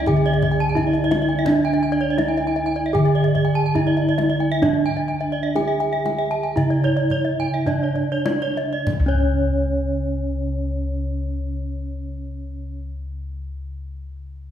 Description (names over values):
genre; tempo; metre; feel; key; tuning
Balinese gamelan; 47-86 BPM; 4/4; straight; unclear; A4 = 440 Hz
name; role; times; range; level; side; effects
gamelan-type bronze metallophone; melody; 0.0-12.8 s; C#4 to G#4-45c; -24 LUFS; right 2 dB; none
gamelan-type bronze metallophone; arpeggios; 0.0-12.8 s; C#5 to A5-40c; -26 LUFS; right 3 dB; none
gamelan-type bossed gongs; bass; 0.0-12.7 s; C#2 to D4; -22 LUFS; equal; none
gamelan-type bronze metallophone; arpeggios; 0.1-12.8 s; C#5 to A5-40c; -28 LUFS; left 4 dB; none
kendang; percussion; 0.1-9.5 s; none; -29 LUFS; left 2 dB; none
room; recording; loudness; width
wet recital hall reverb, RT60 1.7 s; heard from further back in the room; -18 LUFS; side -10 dB against mid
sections
0.0-8.9 A section; 8.9-14.0 B section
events
slowing down 1.5-8.9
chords
none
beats
0.07 0.76 | 1.46 2.18 2.94 3.75 | 4.62 5.56 6.57 7.67 | 8.88 10.15 11.42 12.68